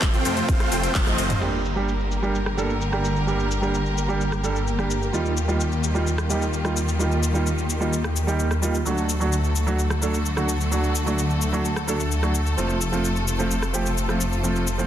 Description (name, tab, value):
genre	EDM, festival progressive house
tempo	129 BPM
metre	4/4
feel	straight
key	G minor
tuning	A4 = 442 Hz
part	rich symphonic string section	sustained chords	0.0-14.9 s	C3 to Bb4	-28 LUFS	left 1 dB	sidechain pumping
part	supersaw chords	riff	0.0-1.4 s	A3 to A5	-26 LUFS	equal	sidechain pumping, low-pass filter, tape echo
part	wide detuned saw bass	bass	0.0-14.9 s	F1 to F2	-25 LUFS	equal	chorus, sidechain pumping
part	big-room dance drum kit	drums	0.0-14.9 s	cabasa, crash cymbal, handclaps, hi-hat, ride cymbal, rim click, toms	-30 LUFS	left 2 dB	low-pass filter on hats, small room ambience, low-pass filter on cymbals, low-pass filter on perc, soft clipping on snare, low-pass filter on snare, low-pass filter on toms
part	electronic kick drum	drums	0.0-1.0 s	none	-22 LUFS	equal	small room ambience
part	warm concert grand piano	accompaniment	1.4-14.9 s	F3 to A4	-26 LUFS	right 3 dB	sidechain pumping, tape echo
room	light reverb, digital ambience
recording	dense, heavily limited modern master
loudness	-21 LUFS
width	side -11 dB against mid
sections	0.0-1.4 A section; 1.4-14.9 B section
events	drop 0.0-1.4; drum fill 0.9-1.4; band accent 0.9; filter sweep on drum 1.4-14.9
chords	0.0 F; 1.4 Gm; 5.1 Ebadd9; 8.9 D; 12.6 F